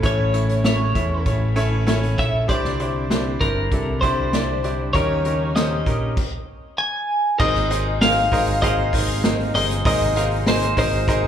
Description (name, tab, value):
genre	piano-driven pop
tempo	98 BPM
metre	4/4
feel	straight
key	Ab major from 7.4 s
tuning	A4 = 439 Hz
part	twelve-string electric guitar	melody	0.0-11.3 s	Bb4 to Ab5	-23 LUFS	equal	lush chorus, slapback echo
part	bright concert grand piano	accompaniment	0.0-11.3 s	Ab2 to F5	-24 LUFS	right 1 dB	slapback echo
part	warm studio string section	sustained chords	0.0-11.3 s	C3 to E4	-32 LUFS	equal	none
part	overdriven picked electric bass	bass	0.0-11.3 s	G1 to E2	-23 LUFS	equal	none
part	unplugged drum kit	drums	0.0-11.2 s	crash cymbal, hi-hat, kick drum, snare drum	-23 LUFS	equal	none
room	light reverb, small room ambience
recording	live gig heard through the venue's PA, club reverb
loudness	-18 LUFS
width	side -9 dB against mid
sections	0.0-7.4 A section; 7.4-11.3 B section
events	stop 6.2-7.4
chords	0.0 A; 2.5 Cadd9; 4.9 Eb7; 7.4 Abadd9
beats	| 0.04 0.65 1.26 1.88 | 2.49 3.10 3.72 4.33 | 4.95 5.56 6.17 6.79 | 7.40 8.01 8.62 9.24 | 9.85 10.46 11.08